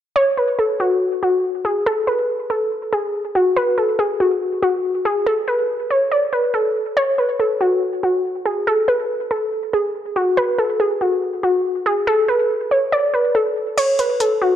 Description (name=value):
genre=hip hop, trap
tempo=141 BPM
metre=4/4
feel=half-time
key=F# minor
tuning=A4 = 436 Hz
part: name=warbly dusty pluck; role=melody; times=0.2-14.6 s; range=F#4 to D5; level=-16 LUFS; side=equal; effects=chorus, low-pass filter
part: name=booming analog drum machine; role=drums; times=13.8-14.3 s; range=crash cymbal, hi-hat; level=-27 LUFS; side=left 2 dB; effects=none
room=light reverb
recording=dark, warm production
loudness=-16 LUFS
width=side -10 dB against mid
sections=0.2-13.8 A section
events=kick muted 13.8-14.6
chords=none